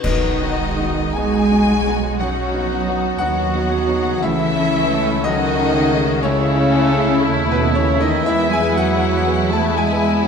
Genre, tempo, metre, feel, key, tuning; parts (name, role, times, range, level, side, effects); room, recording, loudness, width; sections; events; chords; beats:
cinematic, emotional film score for orchestra; 59 BPM; 4/4; rubato; B mixolydian; A4 = 440 Hz
mellow clarinet; second line; 0.0-10.1 s; B3 to A4; -25 LUFS; left 1 dB
muted studio violin section; second line; 0.0-10.3 s; B4 to A5; -25 LUFS; left 2 dB
clear baby grand piano; accompaniment; 0.0-10.3 s; B1 to A5; -23 LUFS; left 3 dB
muted studio viola section; accompaniment; 0.0-10.2 s; C#3 to E4; -26 LUFS; right 1 dB
concert harp; arpeggios; 0.0-10.3 s; B2 to C#5; -29 LUFS; left 10 dB
muted studio cello section; bass; 0.0-10.3 s; B2 to A3; -22 LUFS; right 3 dB
muted studio double bass section; bass; 0.0-10.3 s; B1 to E2; -24 LUFS; right 4 dB
clash cymbals and concert bass drum; percussion; 0.0-2.2 s; -26 LUFS; equal
muted studio violin section; melody; 0.1-10.3 s; E4 to F#4; -25 LUFS; left 6 dB
mellow French horn section; sustained chords; 0.1-10.3 s; B2 to A3; -26 LUFS; left 2 dB
clear oboe; second line; 2.2-10.3 s; D#4 to A4; -28 LUFS; right 2 dB
wet concert hall reverb, RT60 1.8 s; -15 LUFS; side -6 dB against mid
0.0-10.3 A section
band accent 0.0-1.1
0.0 B; 4.2 A/C#; 8.3 E
| 0.03 1.15 2.19 3.19 | 4.23 5.25 6.25 7.25 | 8.27 9.27 10.26